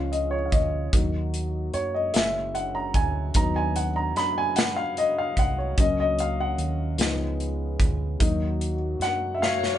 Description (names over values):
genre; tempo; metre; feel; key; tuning
slow gospel; 50 BPM (dotted quarters); 6/8; straight; F# major; A4 = 441 Hz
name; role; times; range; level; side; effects
dark baby grand piano; accompaniment; 0.0-9.8 s; E#3 to B5; -26 LUFS; left 1 dB; none
mellow French horn section; sustained chords; 0.0-9.8 s; E#3 to F#4; -36 LUFS; equal; none
hollow-body short-scale fingered electric bass; bass; 0.0-9.8 s; F#1 to F#2; -29 LUFS; right 1 dB; none
modern studio drum kit; drums; 0.1-9.8 s; hi-hat, kick drum, snare drum; -25 LUFS; equal; none
muted studio string section; melody; 9.4-9.8 s; F#4 to C#5; -27 LUFS; left 6 dB; none
room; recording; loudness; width
moderate small room reverb, RT60 0.5 s; band playing live in one room, nothing above 10.8 kHz; -22 LUFS; side -11 dB against mid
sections
0.0-9.8 A section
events
grand piano solo 0.0-9.8; drum fill 9.4-9.8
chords
0.0 C#; 0.9 D#m; 2.1 F#7; 3.4 B/D#; 5.8 F#/C#; 7.0 C#7; 8.2 D#m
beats
| 0.93 2.14 | 3.35 4.56 | 5.77 6.99 | 8.20 9.41